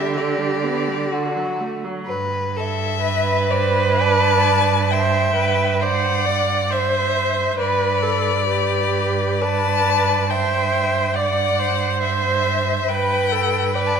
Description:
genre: classical, slow romantic movement for string quartet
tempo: 59-71 BPM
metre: 3/4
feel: rubato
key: G major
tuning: A4 = 439 Hz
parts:
  - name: rich violin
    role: melody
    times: 0.0-14.0 s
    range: D5 to A5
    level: -23 LUFS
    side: left 9 dB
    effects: none
  - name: rich violin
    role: second line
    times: 0.0-14.0 s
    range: F#4 to E5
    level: -24 LUFS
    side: left 2 dB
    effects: none
  - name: rich viola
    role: accompaniment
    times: 0.0-14.0 s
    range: D3 to D5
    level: -21 LUFS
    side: right 4 dB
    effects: none
  - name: rich cello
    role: bass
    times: 0.0-14.0 s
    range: G2 to D3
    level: -24 LUFS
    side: right 6 dB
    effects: none
room: moderate concert hall reverb, RT60 2.3 s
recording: none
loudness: -17 LUFS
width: side -6 dB against mid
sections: 0.0-2.1 A section; 2.1-14.0 B section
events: none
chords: 0.0 G/D; 1.1 D; 2.1 G; 4.9 C/G; 7.6 G; 10.3 C/G; 12.9 G

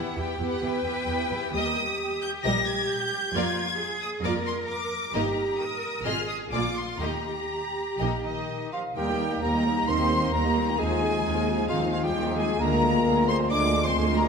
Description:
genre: classical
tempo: 132 BPM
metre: 4/4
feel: rubato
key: Eb major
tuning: A4 = 444 Hz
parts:
  - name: warm symphonic violin section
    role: melody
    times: 0.0-14.3 s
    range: Eb5 to Bb6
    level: -30 LUFS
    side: left 2 dB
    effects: none
  - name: rich studio violin section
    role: second line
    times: 0.0-14.3 s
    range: D4 to Eb5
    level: -35 LUFS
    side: left 4 dB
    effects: none
  - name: rich symphonic viola section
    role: accompaniment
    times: 0.0-14.3 s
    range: D3 to G4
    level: -33 LUFS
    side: right 2 dB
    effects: none
  - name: clear symphonic double bass section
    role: bass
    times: 0.0-14.3 s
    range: G1 to F2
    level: -32 LUFS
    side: right 3 dB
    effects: none
  - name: rich symphonic cello section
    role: bass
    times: 0.0-14.3 s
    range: D2 to B4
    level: -32 LUFS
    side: right 2 dB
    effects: none
  - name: hollow flute section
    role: second line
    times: 8.2-14.3 s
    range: Eb5 to D6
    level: -33 LUFS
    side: right 1 dB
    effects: none
  - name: mellow cor anglais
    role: second line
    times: 8.2-14.3 s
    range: Eb4 to D5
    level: -33 LUFS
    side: right 2 dB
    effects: none
  - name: warm French horn section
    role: sustained chords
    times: 8.2-14.3 s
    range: Eb3 to D4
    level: -29 LUFS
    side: left 4 dB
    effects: none
  - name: dark clarinet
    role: second line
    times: 9.0-14.3 s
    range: Eb4 to F4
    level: -34 LUFS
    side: left 3 dB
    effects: none
  - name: warm bassoon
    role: accompaniment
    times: 9.0-14.3 s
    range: Ab3 to Bb3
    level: -34 LUFS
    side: right 2 dB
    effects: none
room: wet concert hall reverb, RT60 2.1 s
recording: none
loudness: -24 LUFS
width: side -5 dB against mid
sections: 0.0-9.0 A section; 9.0-14.3 B section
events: none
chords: 0.0 Em; 1.5 Eb; 3.3 Bb7/F; 5.1 Eb/G; 6.1 Fm7/Ab; 6.5 Bb7; 7.0 Eb; 10.8 Fm7/Eb; 12.6 Bb7/D

